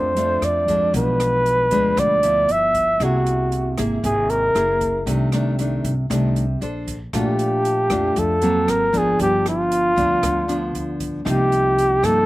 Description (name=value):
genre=bossa nova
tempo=116 BPM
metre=4/4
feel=straight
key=Bb major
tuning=A4 = 439 Hz
part: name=mellow flugelhorn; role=melody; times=0.0-12.3 s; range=F4 to E5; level=-18 LUFS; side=equal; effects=slapback echo
part: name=nylon-string guitar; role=accompaniment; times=0.0-12.3 s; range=F2 to C5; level=-23 LUFS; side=equal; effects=none
part: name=upright bass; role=bass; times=0.0-12.3 s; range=Gb1 to G2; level=-25 LUFS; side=equal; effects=none
part: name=open jazz drum kit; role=drums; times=0.2-12.2 s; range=hi-hat, kick drum, rim click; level=-32 LUFS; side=right 1 dB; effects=none
room=little or no reverb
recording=recorded outdoors, with no room sound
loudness=-17 LUFS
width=side -18 dB against mid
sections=0.0-7.1 A section; 7.1-12.3 A section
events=none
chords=0.0 Bbmaj7 (rootless); 0.9 Bdim7; 2.5 G6; 3.0 Caug7; 4.6 Gb9; 5.1 Cm69; 6.6 Bbmaj9; 7.1 Bbmaj7; 8.7 Ab9; 9.2 G7; 11.3 Cm11